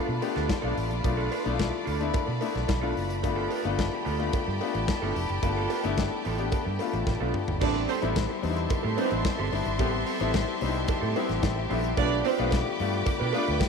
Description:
disco; 110 BPM; 4/4; straight; A minor; A4 = 438 Hz
clear concert grand piano; accompaniment; 0.0-13.7 s; G3 to E5; -30 LUFS; left 11 dB
electric guitar through a small old amp; accompaniment; 0.0-13.6 s; B3 to D5; -36 LUFS; right 14 dB
clear studio string section; sustained chords; 0.0-13.7 s; F4 to D6; -33 LUFS; equal
vintage muted fingered electric bass; bass; 0.1-13.6 s; F1 to B2; -31 LUFS; right 2 dB
modern studio drum kit; drums; 0.2-13.7 s; crash cymbal, hi-hat, kick drum, snare drum, toms; -31 LUFS; left 1 dB
cowbell; percussion; 0.2-13.7 s; -39 LUFS; right 16 dB
warm symphonic string section; second line; 7.6-13.6 s; B3 to D5; -31 LUFS; right 14 dB
light reverb, small room ambience; 1960s-style stereo with parts hard left and right; -25 LUFS; side -5 dB against mid
0.0-7.6 A section; 7.6-13.7 B section
drum fill 7.1-7.6; grand piano fill 10.9-12.0
0.0 Bm7b5; 3.2 G9; 7.6 Am7; 12.0 G7

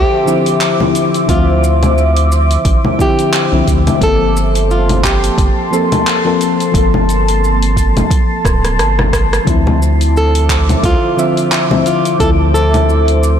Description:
sunset chillout; 88 BPM; 4/4; swing 57% on 16ths; D minor; A4 = 440 Hz
flamenco guitar; melody; 0.0-13.4 s; F4 to A4; -18 LUFS; right 1 dB; vintage 12-bit sampler grit, digital delay
mellow FM electric piano; accompaniment; 0.0-13.4 s; D3 to E5; -17 LUFS; moving between left 8 dB and right 3 dB; chorus, auto-pan, digital delay
shimmering ambient pad; sustained chords; 0.0-13.4 s; Bb3 to D6; -18 LUFS; equal; chorus, built-in reverb, phaser
round analog bass; bass; 0.0-13.4 s; D1 to D2; -14 LUFS; right 1 dB; transformer saturation
deep house drum kit; drums; 0.3-13.4 s; congas, handclaps, hi-hat, rim click, shaker; -18 LUFS; left 1 dB; overdrive
electronic kick drum; drums; 1.3-12.4 s; -15 LUFS; right 1 dB; overdrive
light reverb; blown-out, overdriven recording, overdrive; -10 LUFS; side -8 dB against mid
0.0-13.4 A section
drum fill 8.4-9.5
0.0 Dm9; 4.0 Gm11; 9.5 Dm9

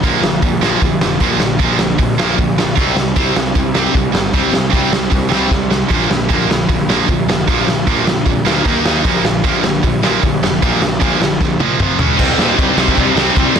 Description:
punk rock; 153 BPM; 4/4; straight; C minor; A4 = 440 Hz
sludgy distorted guitar; riff; 0.0-13.6 s; Bb2 to F4; -19 LUFS; left 11 dB; overdrive
tight distorted guitar; riff; 0.0-13.6 s; F2 to Eb4; -17 LUFS; right 15 dB; distortion
fuzz picked electric bass; bass; 0.0-13.6 s; F1 to Bb2; -22 LUFS; equal; overdrive
raw garage drum kit; drums; 0.0-13.6 s; crash cymbal, hi-hat, kick drum, snare drum, toms; -16 LUFS; equal
high-gain distorted guitar; riff; 12.2-13.6 s; Bb2 to C4; -18 LUFS; equal; distortion
little or no reverb; dense, heavily limited modern master; -12 LUFS; side -7 dB against mid
0.0-12.2 A section; 12.2-13.6 B section
drum fill 5.5-5.9, 11.4-12.2
0.0 Bb; 2.8 C5; 5.9 Bb; 8.7 Eb5; 9.0 Bb; 11.8 F5; 12.0 Db5; 12.2 Cm

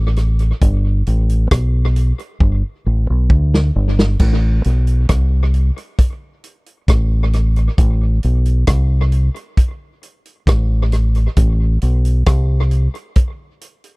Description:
roots reggae; 67 BPM; 4/4; straight; A minor; A4 = 440 Hz
deep dub fingered electric bass; bass; 0.0-12.9 s; G1 to D2; -14 LUFS; equal
vintage drum kit; drums; 0.2-14.0 s; crash cymbal, hi-hat, kick drum, rim click, snare drum; -15 LUFS; equal; tape echo
little or no reverb; dry, close 1970s-style studio recording; -13 LUFS; side -27 dB against mid
0.0-4.2 A section; 4.2-14.0 B section
drum fill 2.4-4.2

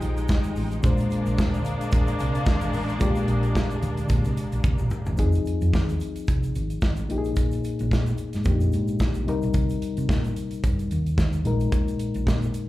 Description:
disco; 110 BPM; 4/4; swing 56% on 16ths; A4 = 441 Hz
reed electric piano; accompaniment; 0.0-12.7 s; Bb2 to C5; -28 LUFS; left 3 dB; slapback echo
clear studio string section; sustained chords; 0.0-5.2 s; F3 to G5; -31 LUFS; equal
hollow-body short-scale fingered electric bass; bass; 0.0-12.5 s; F1 to C3; -26 LUFS; right 1 dB
modern studio drum kit; drums; 0.0-12.7 s; hi-hat, kick drum, snare drum, toms; -24 LUFS; equal
egg shaker; percussion; 0.0-12.7 s; -53 LUFS; right 3 dB
light reverb; live gig heard through the venue's PA, club reverb; -22 LUFS; side -16 dB against mid
0.0-5.2 A section; 5.2-12.7 B section
drum fill 4.6-5.2
0.0 Fm9; 0.8 Bb9; 5.2 Fm7; 7.1 Bb7sus4; 9.3 Cm7; 11.5 Bb7sus4

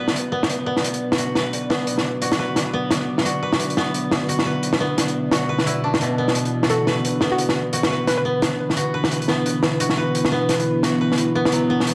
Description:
half-time drum and bass; 174 BPM; 4/4; swing 59% on 16ths, half-time; B minor; A4 = 441 Hz
dark analog pad; sustained chords; 0.0-11.9 s; B3 to E5; -27 LUFS; equal; chorus
koto; arpeggios; 0.0-11.9 s; B2 to B4; -27 LUFS; equal; low-pass filter, dub echo
pulsing gated texture; texture; 0.0-11.9 s; B4 to D5; -35 LUFS; equal; chorus, built-in reverb
crunchy breakbeat drum kit; drums; 0.1-11.9 s; hi-hat, snare drum; -24 LUFS; equal
hollow square pluck; melody; 6.7-8.2 s; F#4 to B4; -28 LUFS; equal; chorus, digital delay
wet lush hall reverb, RT60 1.8 s; dark, warm production; -21 LUFS; mono
0.0-11.9 A section
0.0 Bm

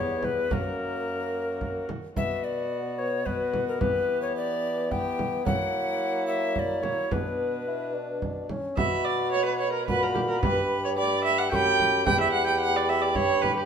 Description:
classical, renaissance-style consort dance; 109 BPM; 3/4; straight; B harmonic minor; A4 = 440 Hz
alto recorder; melody; 0.0-13.7 s; A#4 to C#6; -30 LUFS; left 4 dB
warm viola; second line; 0.0-13.7 s; D4 to G5; -29 LUFS; right 4 dB
mellow bassoon; accompaniment; 0.0-13.7 s; A#3 to G4; -31 LUFS; left 1 dB
mellow bassoon; bass; 0.0-13.7 s; E2 to F#3; -32 LUFS; right 1 dB
frame drum; percussion; 0.2-13.7 s; -31 LUFS; right 2 dB
wet stone room reverb, RT60 1.2 s; minimal, uncompressed stereo recording; -24 LUFS; side -7 dB against mid
0.0-8.8 A section; 8.8-13.7 A section
0.0 Em; 0.5 F#; 2.2 Bm; 3.8 Em; 5.5 F#7; 7.1 Bm; 8.8 B5; 10.4 G; 12.1 Em

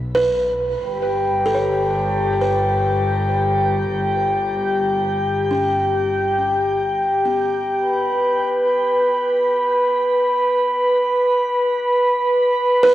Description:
ambient; free time; A4 = 441 Hz
clear chamber double bass section; bass; 0.0-7.7 s; G1 to B1; -26 LUFS; equal
buzzing kalimba; arpeggios; 0.1-12.9 s; B3 to C#5; -22 LUFS; right 2 dB; tape echo
glass harmonica; texture; 0.8-12.9 s; G4 to B5; -17 LUFS; equal
wet shimmer reverb, RT60 7.4 s; worn, warbling old tape, cassette tape, warbly pitch drift; -16 LUFS; side -13 dB against mid
0.0-7.8 A section; 7.8-12.9 B section
fade-out on kalimba 0.0-7.8; fade-out on double bass section 0.0-7.8
0.0 N.C.; 0.8 G; 7.8 N.C.

